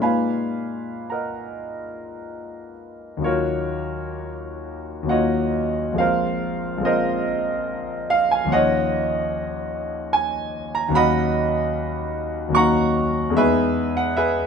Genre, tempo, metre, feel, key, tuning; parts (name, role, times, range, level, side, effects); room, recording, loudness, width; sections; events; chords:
classical, impressionist solo piano; 55-76 BPM; 3/4; rubato; Eb minor; A4 = 440 Hz
clear concert grand piano; solo; 0.0-14.5 s; Bb1 to C#6; -20 LUFS; equal
moderate studio reverb, RT60 0.8 s; minimal, uncompressed stereo recording; -20 LUFS; side -6 dB against mid
0.0-3.3 A section; 3.3-14.5 B section
0.0 Bb7sus4; 3.3 Ebm9; 6.0 Bb9sus4; 8.5 Ebm9; 11.0 Bmaj9/D#; 13.4 Emaj7